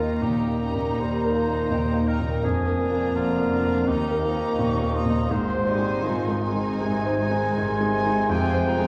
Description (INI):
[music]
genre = classical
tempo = 83 BPM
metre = 4/4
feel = rubato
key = Ab major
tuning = A4 = 439 Hz
[part]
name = clear concert grand piano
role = melody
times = 0.0-8.9 s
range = Eb2 to C5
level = -27 LUFS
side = equal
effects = none
[part]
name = rich chamber violin section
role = melody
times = 0.0-8.9 s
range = Ab5 to Bb5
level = -42 LUFS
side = equal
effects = none
[part]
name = clear oboe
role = second line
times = 0.0-8.9 s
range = F4 to Ab5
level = -33 LUFS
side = equal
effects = none
[part]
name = clear symphonic violin section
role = second line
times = 0.0-8.9 s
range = D4 to F4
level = -40 LUFS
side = equal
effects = none
[part]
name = warm bassoon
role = accompaniment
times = 0.0-8.9 s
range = C3 to G3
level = -36 LUFS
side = equal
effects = none
[part]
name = warm symphonic viola section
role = accompaniment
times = 0.0-8.9 s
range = Bb3 to C4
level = -37 LUFS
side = equal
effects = none
[part]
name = warm French horn section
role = sustained chords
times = 0.0-8.9 s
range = Ab3 to Eb4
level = -35 LUFS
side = equal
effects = none
[part]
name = clear symphonic double bass section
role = bass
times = 0.0-8.9 s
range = F1 to Eb2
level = -34 LUFS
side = equal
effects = none
[part]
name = rich symphonic cello section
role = bass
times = 0.0-8.9 s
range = Eb2 to Ab2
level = -34 LUFS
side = equal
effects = none
[part]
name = mellow clarinet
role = second line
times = 0.2-8.9 s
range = Bb3 to F4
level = -38 LUFS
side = equal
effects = none
[part]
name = silver concert flute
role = second line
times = 0.2-8.9 s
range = G5 to Db6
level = -38 LUFS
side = equal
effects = none
[sound]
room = wet recital hall reverb, RT60 1.4 s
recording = recorded in a church or concert hall, vinyl crackle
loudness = -24 LUFS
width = mono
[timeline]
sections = 0.0-8.9 A section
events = none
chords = 0.0 Eb; 2.4 Bb7/F; 3.9 Eb; 5.3 Ab; 8.3 Fm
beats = 0.23 0.99 1.72 | 2.44 3.16 3.88 4.59 | 5.30 6.03 6.82 7.57 | 8.31